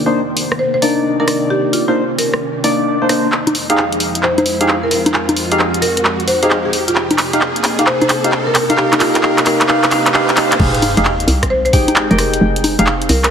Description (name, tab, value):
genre	UK garage, two-step garage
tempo	132 BPM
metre	4/4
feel	swing 66% on 16ths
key	F dorian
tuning	A4 = 438 Hz
part	buzzing marimba with medium mallets	melody	0.0-13.3 s	F4 to C5	-20 LUFS	equal	ping-pong delay
part	soft string machine	sustained chords	0.0-13.3 s	F2 to G5	-25 LUFS	equal	ensemble chorus, sidechain pumping
part	percussive organ stab	stabs	0.0-12.9 s	Bb3 to G5	-17 LUFS	equal	lush chorus, vintage 12-bit sampler grit, ping-pong delay
part	riser and sub drop	sound effects	0.3-12.4 s	none	-24 LUFS	right 1 dB	none
part	punchy analog drum machine	drums	0.4-13.3 s	congas, crash cymbal, handclaps, hi-hat, rim click	-16 LUFS	equal	none
part	hollow knocking FM bass	bass	10.6-13.3 s	F1 to C2	-16 LUFS	equal	none
part	electronic kick drum	drums	10.6-11.9 s	none	-16 LUFS	equal	none
room	moderate lush hall reverb, RT60 2.2 s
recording	heavily compressed radio sound, multiband compression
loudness	-12 LUFS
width	side -7 dB against mid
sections	0.0-10.6 A section; 10.6-13.3 B section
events	build-up 0.0-10.6; riser 0.3-10.6; drum fill 3.3-10.6; drop 10.6-13.3; impact 10.6-12.4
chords	0.0 Cm9; 3.3 Fm9; 6.7 Cm9; 10.6 Fm9